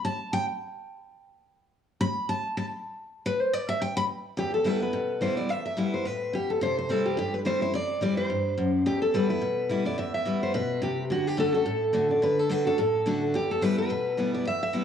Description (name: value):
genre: bluegrass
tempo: 214 BPM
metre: 4/4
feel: swing 56% on 8ths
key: E minor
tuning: A4 = 440 Hz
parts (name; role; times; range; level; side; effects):
- picked steel-string acoustic guitar; accompaniment; 0.0-14.8 s; E2 to B5; -28 LUFS; left 1 dB; plate reverb
- picked steel-string acoustic guitar; melody; 4.4-14.8 s; F#4 to E5; -26 LUFS; equal; plate reverb, tape echo
room: wet studio reverb, RT60 0.6 s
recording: worn, warbling old tape, cassette tape, warbly pitch drift, small room reverb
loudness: -24 LUFS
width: side -8 dB against mid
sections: 0.0-4.4 A section; 4.4-14.8 B section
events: steel-string acoustic guitar solo 0.0-4.4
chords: 0.0 N.C.; 4.4 Em; 6.6 C; 8.9 Em; 11.1 D; 13.3 Em